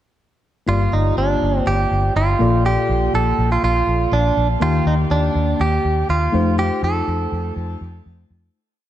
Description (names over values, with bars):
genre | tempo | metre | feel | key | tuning
1980s-style pop | 122 BPM | 4/4 | straight | unclear | A4 = 436 Hz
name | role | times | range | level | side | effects
direct-recorded clean electric guitar | melody | 0.7-7.5 s | D4 to A4 | -20 LUFS | right 3 dB | spring reverb, shimmer reverb, ping-pong delay
mellow FM electric piano | accompaniment | 0.7-8.6 s | G2 to G5 | -22 LUFS | left 3 dB | chorus, shimmer reverb
vintage muted fingered electric bass | bass | 0.7-8.5 s | G1 to F2 | -20 LUFS | equal | none
room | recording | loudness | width
light reverb, digital ambience | dark, warm production | -16 LUFS | side -12 dB against mid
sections
0.7-8.6 verse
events
fade-out 6.6-8.6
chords
0.7 Gm7; 2.4 Bbmaj7; 4.6 Eb; 6.3 F7